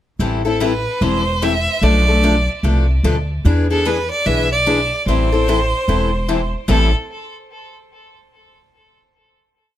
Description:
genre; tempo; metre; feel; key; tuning
acoustic string swing (jazz manouche); 148 BPM; 4/4; swing 62% on 8ths; A minor; A4 = 440 Hz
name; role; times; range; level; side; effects
picked steel-string acoustic guitar; accompaniment; 0.2-6.9 s; A2 to A4; -19 LUFS; left 4 dB; none
upright bass; bass; 0.2-6.9 s; E1 to E2; -17 LUFS; equal; none
bright violin; melody; 0.5-6.9 s; A4 to E5; -20 LUFS; right 2 dB; plate reverb, tape echo
room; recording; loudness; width
light reverb; none; -14 LUFS; side -12 dB against mid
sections
0.2-6.7 A section; 6.7-8.3 final chord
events
none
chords
0.2 Am7; 1.8 Bm7b5; 3.4 E7; 5.1 Am7

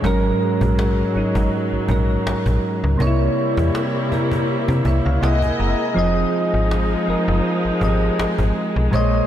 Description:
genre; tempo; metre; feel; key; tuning
contemporary R&B; 81 BPM; 4/4; swing 54% on 16ths; unclear; A4 = 443 Hz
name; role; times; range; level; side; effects
soft electric-piano-like synth keys; accompaniment; 0.0-9.3 s; Ab2 to Bb5; -20 LUFS; right 1 dB; chorus
warm studio string section; sustained chords; 0.0-9.3 s; C3 to D#5; -24 LUFS; left 1 dB; none
slap-like FM bass; bass; 0.0-9.2 s; F1 to C3; -20 LUFS; equal; none
cajon; drums; 0.0-9.2 s; none; -30 LUFS; equal; none
room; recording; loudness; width
moderate lush hall reverb, RT60 2.7 s; dreamy mix soaked in reverb; -17 LUFS; side -11 dB against mid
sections
0.0-9.3 A section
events
synth keys fill 4.5-6.0; kick muted 6.0-7.4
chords
0.0 Ab9sus4; 3.0 C7b9; 5.2 C7alt; 6.0 Fm7

